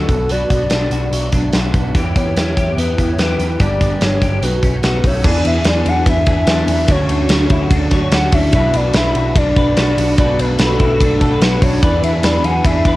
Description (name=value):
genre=jangly indie pop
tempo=146 BPM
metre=4/4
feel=straight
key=B minor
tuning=A4 = 441 Hz
part: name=hollow clarinet-like synth lead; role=melody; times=0.0-13.0 s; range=A4 to F#5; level=-20 LUFS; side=left 2 dB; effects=chorus
part: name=picked steel-string acoustic guitar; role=accompaniment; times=0.0-13.0 s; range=G2 to G#4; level=-24 LUFS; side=right 4 dB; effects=cassette tape
part: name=electric guitar through a small old amp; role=arpeggios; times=0.0-13.0 s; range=B2 to C#5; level=-21 LUFS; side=left 2 dB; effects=ensemble chorus, cassette tape
part: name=vintage muted picked electric bass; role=bass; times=0.0-13.0 s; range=G1 to E2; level=-18 LUFS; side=equal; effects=none
part: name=big rock drum kit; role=drums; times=0.1-12.9 s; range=crash cymbal, hi-hat, kick drum, ride cymbal, snare drum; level=-16 LUFS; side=equal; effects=none
part: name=vibraphone with medium mallets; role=second line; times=4.9-13.0 s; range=A3 to F#4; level=-26 LUFS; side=right 3 dB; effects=cassette tape
room=little or no reverb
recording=home recording on cassette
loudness=-12 LUFS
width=side -17 dB against mid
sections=0.0-5.2 A section; 5.2-13.0 B section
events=none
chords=0.1 Bm; 1.9 Em; 3.6 G; 4.4 B7; 5.2 E7; 6.9 Dmaj7; 8.5 Bm7; 11.8 E7